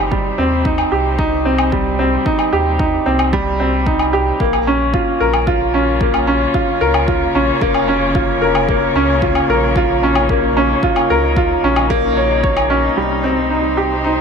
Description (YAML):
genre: piano and strings electronica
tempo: 112 BPM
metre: 4/4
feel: straight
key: Bb dorian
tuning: A4 = 441 Hz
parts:
  - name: muted string quartet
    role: sustained chords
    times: 0.0-14.2 s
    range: C3 to Db5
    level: -22 LUFS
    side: left 1 dB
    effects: sidechain pumping
  - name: clear upright piano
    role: riff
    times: 0.0-14.2 s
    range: G3 to Db5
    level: -15 LUFS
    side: equal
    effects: ping-pong delay
  - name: warm sub bass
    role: bass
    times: 0.0-14.2 s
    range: F1 to Eb2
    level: -22 LUFS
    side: equal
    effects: sidechain pumping
  - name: electronic kick drum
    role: drums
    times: 0.1-12.5 s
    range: none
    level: -21 LUFS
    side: equal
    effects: none
  - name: woodblock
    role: drums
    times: 0.8-12.7 s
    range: none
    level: -21 LUFS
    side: left 2 dB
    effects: low-pass filter on perc, low-pass filter on room
room: moderate concert hall reverb, RT60 2.2 s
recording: none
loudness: -13 LUFS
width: side -6 dB against mid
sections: 0.0-13.0 A section; 13.0-14.2 B section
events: fade-in on string quartet 0.0-13.0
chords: 0.0 Cm; 4.4 Bbm; 13.0 Cm